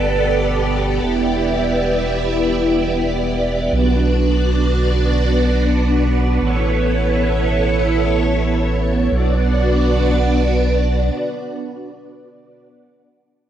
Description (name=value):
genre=synthwave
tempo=free time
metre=none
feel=none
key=B minor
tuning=A4 = 440 Hz
part: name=string machine, full ensemble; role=sustained chords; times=0.0-12.6 s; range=B3 to D5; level=-17 LUFS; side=right 1 dB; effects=phaser, ensemble chorus, cassette tape
part: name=round analog bass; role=bass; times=0.0-11.1 s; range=E1 to B1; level=-19 LUFS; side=right 1 dB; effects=none
room=moderate booth ambience, RT60 0.2 s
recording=home recording on cassette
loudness=-15 LUFS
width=side -10 dB against mid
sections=0.0-9.1 A section; 9.1-11.8 B section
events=none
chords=0.0 Gadd9; 1.0 Em7; 3.7 Bm; 6.4 Aadd9; 9.1 Bm